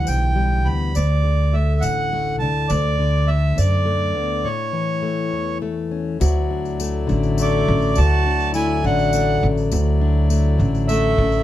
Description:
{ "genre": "acoustic folk duo or small band", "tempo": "68 BPM (dotted quarters)", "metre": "6/8", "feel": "straight", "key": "D major from 6.2 s", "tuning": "A4 = 439 Hz", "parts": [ { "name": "accordion", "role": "melody", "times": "0.0-11.4 s", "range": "C#5 to B5", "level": "-23 LUFS", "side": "right 3 dB", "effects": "none" }, { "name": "fingerpicked plugged-in steel-string acoustic guitar", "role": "accompaniment", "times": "0.0-11.4 s", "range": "D2 to F#4", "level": "-24 LUFS", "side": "left 5 dB", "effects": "none" }, { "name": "upright bass", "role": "bass", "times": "0.0-11.4 s", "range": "A1 to F#2", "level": "-19 LUFS", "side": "equal", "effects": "none" }, { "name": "tambourine", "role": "percussion", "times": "0.1-11.4 s", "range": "none", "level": "-35 LUFS", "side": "left 9 dB", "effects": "none" }, { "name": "hand-pumped harmonium", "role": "sustained chords", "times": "6.2-11.4 s", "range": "F#3 to D5", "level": "-30 LUFS", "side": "left 5 dB", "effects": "none" }, { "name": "warm fiddle", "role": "second line", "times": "7.4-11.4 s", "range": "A3 to F#4", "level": "-24 LUFS", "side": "left 2 dB", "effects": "none" } ], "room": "light reverb", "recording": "dark, warm production", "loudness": "-17 LUFS", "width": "side -13 dB against mid", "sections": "0.0-6.2 A section; 6.2-11.4 B section", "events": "break 4.5-6.2", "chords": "0.0 Em7; 0.9 D; 2.7 Bm7/D; 4.5 A; 6.2 Dadd9" }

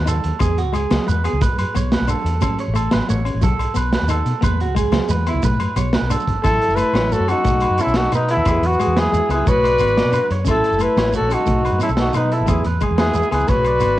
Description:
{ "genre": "highlife guitar band", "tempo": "119 BPM (dotted quarters)", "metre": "12/8", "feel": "straight", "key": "A major", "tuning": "A4 = 440 Hz", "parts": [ { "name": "clean electric guitar", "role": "arpeggios", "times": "0.0-14.0 s", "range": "E4 to D5", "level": "-25 LUFS", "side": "right 6 dB", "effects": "cassette tape, plate reverb" }, { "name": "fingered electric bass", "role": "bass", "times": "0.0-14.0 s", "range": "F#1 to B2", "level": "-21 LUFS", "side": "equal", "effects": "none" }, { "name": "clean electric guitar", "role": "accompaniment", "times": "0.1-14.0 s", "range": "F#3 to D#4", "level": "-28 LUFS", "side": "left 7 dB", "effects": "cassette tape" }, { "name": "crunchy breakbeat drum kit", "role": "drums", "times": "0.1-13.9 s", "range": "hi-hat, kick drum, snare drum", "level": "-23 LUFS", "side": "equal", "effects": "cassette tape" }, { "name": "agogo bells", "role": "percussion", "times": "0.1-14.0 s", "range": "none", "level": "-31 LUFS", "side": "left 8 dB", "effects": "none" }, { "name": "shekere", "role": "percussion", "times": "0.1-13.9 s", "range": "none", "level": "-27 LUFS", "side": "right 3 dB", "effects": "none" }, { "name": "congas", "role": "percussion", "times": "0.2-13.9 s", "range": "none", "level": "-30 LUFS", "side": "right 8 dB", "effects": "none" }, { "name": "breathy trumpet", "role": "melody", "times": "6.4-14.0 s", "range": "D#4 to B4", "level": "-18 LUFS", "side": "left 2 dB", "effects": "cassette tape, plate reverb" }, { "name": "breathy alto saxophone", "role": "second line", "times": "6.4-14.0 s", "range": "B3 to F#4", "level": "-27 LUFS", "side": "right 5 dB", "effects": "cassette tape, plate reverb" } ], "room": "moderate studio reverb, RT60 0.7 s", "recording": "home recording on cassette", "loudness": "-15 LUFS", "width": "side -15 dB against mid", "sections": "0.0-6.4 A section; 6.4-14.0 B section", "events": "none", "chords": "0.4 E; 1.4 Bm; 2.4 A; 3.4 B7; 4.4 E; 5.4 Bm; 6.4 A; 7.5 B7; 8.5 E; 9.5 Bm; 10.5 A; 11.5 B7; 12.5 E; 13.5 Bm" }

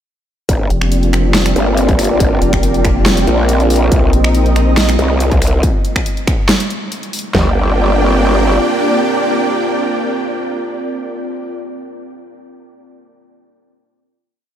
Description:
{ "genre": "heavy wobble dubstep", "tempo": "140 BPM", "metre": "4/4", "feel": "half-time", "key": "G minor", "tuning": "A4 = 439 Hz", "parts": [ { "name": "supersaw chords", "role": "sustained chords", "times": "0.5-11.5 s", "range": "Bb3 to G5", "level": "-19 LUFS", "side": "right 1 dB", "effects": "analog chorus, sidechain pumping, low-pass filter" }, { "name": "growl bass", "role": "bass", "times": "0.5-8.6 s", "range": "G1 to C2", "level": "-14 LUFS", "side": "equal", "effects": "chorus, overdrive" }, { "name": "dubstep drum kit", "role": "drums", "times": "0.5-7.5 s", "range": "kick drum, snare drum, toms", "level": "-15 LUFS", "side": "equal", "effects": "distortion, studio reverb" }, { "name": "dubstep drum kit", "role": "drums", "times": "0.5-7.3 s", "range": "finger snaps, hi-hat, snare drum", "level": "-19 LUFS", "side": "equal", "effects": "studio reverb" }, { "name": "airy breathy pad", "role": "texture", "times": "0.7-11.5 s", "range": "C4 to Eb5", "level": "-20 LUFS", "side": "equal", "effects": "chorus, sidechain pumping" }, { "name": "vowel-sweep wobble bass", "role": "bass", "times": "0.7-5.0 s", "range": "F1 to Bb1", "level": "-14 LUFS", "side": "equal", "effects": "chorus, overdrive" } ], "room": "moderate cathedral reverb, RT60 5.0 s", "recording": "dreamy mix soaked in reverb", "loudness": "-12 LUFS", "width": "side -10 dB against mid", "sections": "0.5-7.3 drop; 7.3-10.8 final chord", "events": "drop 0.5-7.3", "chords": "0.5 Gm; 3.9 Cm; 7.3 Gm" }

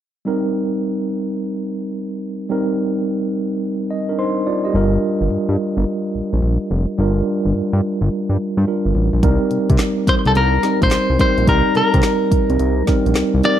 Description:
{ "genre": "R&B, new jack swing", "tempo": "107 BPM", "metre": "4/4", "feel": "swing 66% on 16ths", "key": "unclear", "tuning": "A4 = 440 Hz", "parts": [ { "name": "mellow tine electric piano", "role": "accompaniment", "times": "0.3-13.6 s", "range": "G3 to C6", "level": "-19 LUFS", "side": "right 1 dB", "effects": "fast stereo tremolo" }, { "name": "fat analog bass", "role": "bass", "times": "4.7-13.4 s", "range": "F1 to C3", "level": "-17 LUFS", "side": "equal", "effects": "none" }, { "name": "deep house drum kit", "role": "drums", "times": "9.2-13.6 s", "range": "handclaps, hi-hat, kick drum, snare drum", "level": "-18 LUFS", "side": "equal", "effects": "none" }, { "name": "clean electric guitar", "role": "melody", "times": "10.1-13.6 s", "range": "A4 to D5", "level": "-18 LUFS", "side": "left 1 dB", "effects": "spring reverb, slapback echo" } ], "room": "little or no reverb", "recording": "dry, close 1970s-style studio recording", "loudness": "-16 LUFS", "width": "side -10 dB against mid", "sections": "0.3-9.2 A section; 9.2-13.6 B section", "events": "tine electric piano fill 3.6-4.7", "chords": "0.3 Cm7; 4.7 Gm7; 9.2 Cm7" }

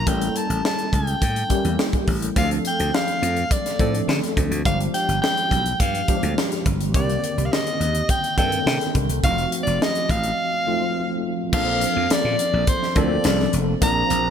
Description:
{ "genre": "polished 1980s jazz-funk pop", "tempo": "105 BPM", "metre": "4/4", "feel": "straight", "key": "Bb major", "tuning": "A4 = 439 Hz", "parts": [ { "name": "bright soprano saxophone", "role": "melody", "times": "0.0-14.3 s", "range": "C5 to Bb5", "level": "-24 LUFS", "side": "equal", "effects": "none" }, { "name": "tine electric piano", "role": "accompaniment", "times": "0.0-14.3 s", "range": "D3 to A4", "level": "-25 LUFS", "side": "left 1 dB", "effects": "overdrive, fast stereo tremolo, ensemble chorus" }, { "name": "slap bass", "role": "bass", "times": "0.0-14.3 s", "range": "F1 to D3", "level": "-24 LUFS", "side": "equal", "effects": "none" }, { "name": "crisp fusion drum kit", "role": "drums", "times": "0.1-14.2 s", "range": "crash cymbal, hi-hat, kick drum, snare drum", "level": "-23 LUFS", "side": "equal", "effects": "gated reverb" } ], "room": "light reverb, studio reverb", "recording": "bright 1980s-style digital production", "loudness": "-19 LUFS", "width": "side -8 dB against mid", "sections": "0.0-11.5 A section; 11.5-14.3 B section", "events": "break 10.4-11.5", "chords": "0.1 A7b9; 2.4 Dm7; 4.7 G7b9; 6.9 Cm9; 9.2 F7b9; 11.5 Bbmaj9" }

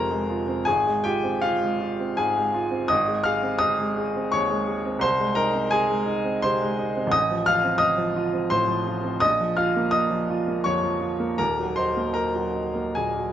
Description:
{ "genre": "classical, romantic character piece for solo piano", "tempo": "68-90 BPM", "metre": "3/4", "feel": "rubato", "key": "Bb minor from 7.1 s", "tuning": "A4 = 440 Hz", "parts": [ { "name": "clear baby grand piano", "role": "solo", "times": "0.0-13.3 s", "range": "Eb1 to F6", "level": "-21 LUFS", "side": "equal", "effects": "none" } ], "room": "moderate large studio reverb, RT60 1.2 s", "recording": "nothing above 7.9 kHz", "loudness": "-21 LUFS", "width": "side -10 dB against mid", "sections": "0.0-13.3 A section", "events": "none", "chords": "0.0 Fm; 0.7 Fm/Ab; 2.9 Ab; 5.0 Ab/C; 7.1 F7/A; 9.2 Bbm; 11.4 Ebm" }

